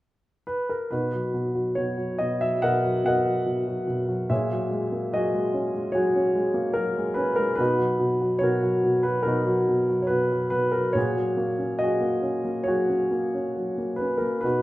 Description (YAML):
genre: classical, lyrical solo piano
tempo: 71 BPM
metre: 4/4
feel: rubato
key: B major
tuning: A4 = 438 Hz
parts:
  - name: warm upright piano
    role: solo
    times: 0.5-14.6 s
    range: A#2 to F#5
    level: -22 LUFS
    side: equal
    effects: none
room: wet recital hall reverb, RT60 1.4 s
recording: recorded in a church or concert hall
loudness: -22 LUFS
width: side -17 dB against mid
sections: 0.9-14.6 A section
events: none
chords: 0.0 N.C.; 0.9 Bmaj7; 4.3 F#add9/A#; 7.6 Bmaj7; 11.0 F#add9/A#